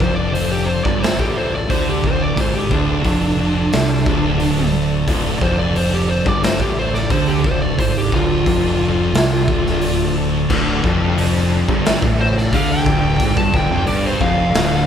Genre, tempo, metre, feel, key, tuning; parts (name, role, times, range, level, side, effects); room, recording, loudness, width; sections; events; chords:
stoner and doom metal; 89 BPM; 4/4; straight; D minor; A4 = 440 Hz
fuzz lead guitar; melody; 0.0-14.9 s; D4 to A5; -21 LUFS; equal; distortion
overdriven tonewheel organ; sustained chords; 0.0-14.9 s; D3 to A4; -28 LUFS; left 2 dB; slow rotary speaker
thick fuzz guitar; riff; 0.0-14.9 s; D2 to D3; -22 LUFS; left 5 dB; distortion
thick fuzz guitar; riff; 0.0-14.9 s; D2 to D3; -23 LUFS; right 8 dB; distortion
growling fingered electric bass; bass; 0.0-14.9 s; D1 to D2; -22 LUFS; equal; overdrive
raw garage drum kit; drums; 0.0-14.7 s; crash cymbal, hi-hat, kick drum, snare drum; -20 LUFS; equal
fuzz guitar; riff; 10.5-14.9 s; D2 to D3; -22 LUFS; right 1 dB; distortion
light reverb; band playing live in one room; -15 LUFS; side -8 dB against mid
0.0-14.9 A section
lead electric guitar solo 0.0-14.9
0.0 Dm